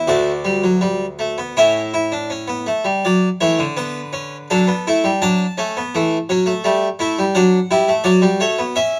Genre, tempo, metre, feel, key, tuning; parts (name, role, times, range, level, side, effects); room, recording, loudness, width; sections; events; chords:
classical, baroque-style 4-part fugue for harpsichord; 83 BPM; 4/4; straight; D major; A4 = 439 Hz
harpsichord; solo; 0.0-9.0 s; D2 to A5; -18 LUFS; equal
light reverb; close, detailed microphones; -18 LUFS; mono
0.0-3.0 A section; 3.0-9.0 B section
0.1 Asus4/D; 1.6 A; 3.0 D; 4.5 D/F#; 5.9 A7(no3)/E; 7.4 D/F#